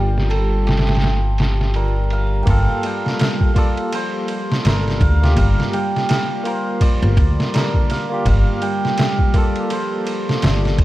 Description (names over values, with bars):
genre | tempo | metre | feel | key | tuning
trip hop | 83 BPM | 4/4 | swing 58% on 16ths | G minor | A4 = 442 Hz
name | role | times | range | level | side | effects
hammered dulcimer | melody | 0.0-10.8 s | F4 to G5 | -25 LUFS | right 2 dB | tape echo
barky tine electric piano | accompaniment | 0.0-10.8 s | Bb3 to Bb4 | -26 LUFS | right 1 dB | overdrive, tremolo, tape echo
warbly tape-like pad | sustained chords | 0.0-10.8 s | G3 to G4 | -30 LUFS | right 1 dB | chorus, built-in reverb
Celtic harp | arpeggios | 0.0-10.8 s | D3 to G3 | -28 LUFS | left 4 dB | tape echo
upright bass | bass | 0.0-10.8 s | G1 to D2 | -17 LUFS | equal | none
backwards swelling texture | texture | 0.1-2.5 s | F4 | -38 LUFS | equal | none
trip hop sampler-style drum kit | drums | 0.2-10.8 s | kick drum, ride cymbal, snare drum | -19 LUFS | equal | low-pass filter on cymbals, small room ambience, low-pass filter on snare, low-pass filter on kick
room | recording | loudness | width
studio reverb | dark, warm production, vinyl crackle | -15 LUFS | side -16 dB against mid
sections
0.0-2.5 A section; 2.5-10.8 B section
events
filter sweep on ambient pad 0.0-2.5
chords
0.0 Gm7